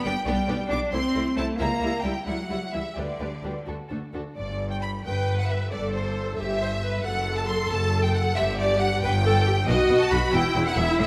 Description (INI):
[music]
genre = quick classical-period movement for string orchestra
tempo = 90 BPM (dotted quarters)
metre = 6/8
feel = rubato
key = G major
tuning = A4 = 440 Hz
[part]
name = rich studio violin section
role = melody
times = 0.0-11.1 s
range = C5 to D6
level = -32 LUFS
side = equal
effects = none
[part]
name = clear chamber double bass section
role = bass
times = 0.0-11.1 s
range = E1 to D2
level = -32 LUFS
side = equal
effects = none
[part]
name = rich studio cello section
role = bass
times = 0.0-11.1 s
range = E2 to D4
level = -31 LUFS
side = equal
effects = none
[part]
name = rich studio violin section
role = second line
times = 0.1-11.1 s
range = E4 to C6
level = -35 LUFS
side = equal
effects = none
[part]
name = rich symphonic viola section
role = accompaniment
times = 0.1-11.1 s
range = G3 to C5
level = -30 LUFS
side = equal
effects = none
[sound]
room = wet scoring stage reverb, RT60 1.8 s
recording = none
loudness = -25 LUFS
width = mono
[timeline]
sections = 0.0-4.4 A section; 4.4-11.1 B section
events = none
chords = 0.3 G; 0.9 Am/C; 1.6 C#dim7; 3.0 G/D; 3.7 D; 4.4 G; 7.0 F#dim; 8.4 Gmaj7sus2; 9.7 B; 10.3 Em